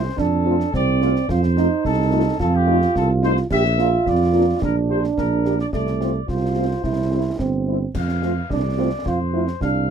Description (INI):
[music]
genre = military-style march for wind band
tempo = 108 BPM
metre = 2/4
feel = straight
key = F major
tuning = A4 = 440 Hz
[part]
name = mellow trumpet section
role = melody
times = 0.0-9.9 s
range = G4 to F5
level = -26 LUFS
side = left 5 dB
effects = none
[part]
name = warm euphonium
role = second line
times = 0.0-9.9 s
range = A3 to G4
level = -22 LUFS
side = right 5 dB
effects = none
[part]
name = dark tuba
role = bass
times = 0.0-9.9 s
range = G1 to F2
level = -21 LUFS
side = right 3 dB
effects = none
[part]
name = concert snare drum, concert bass drum and clash cymbals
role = drums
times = 0.2-9.8 s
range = none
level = -30 LUFS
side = left 1 dB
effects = none
[part]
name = dark French horn section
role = accompaniment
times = 0.5-9.9 s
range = G3 to G4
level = -23 LUFS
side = left 2 dB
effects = none
[sound]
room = light reverb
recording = close, detailed microphones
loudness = -17 LUFS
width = side -8 dB against mid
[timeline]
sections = 0.0-9.9 A section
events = none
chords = 0.0 F; 1.3 F7; 3.5 Bb; 4.6 Gm/Bb; 5.7 F/C; 6.8 C; 8.0 F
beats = | 0.18 0.74 | 1.29 1.85 | 2.40 2.96 | 3.51 4.07 | 4.62 5.18 | 5.73 6.29 | 6.84 7.40 | 7.95 8.51 | 9.06 9.62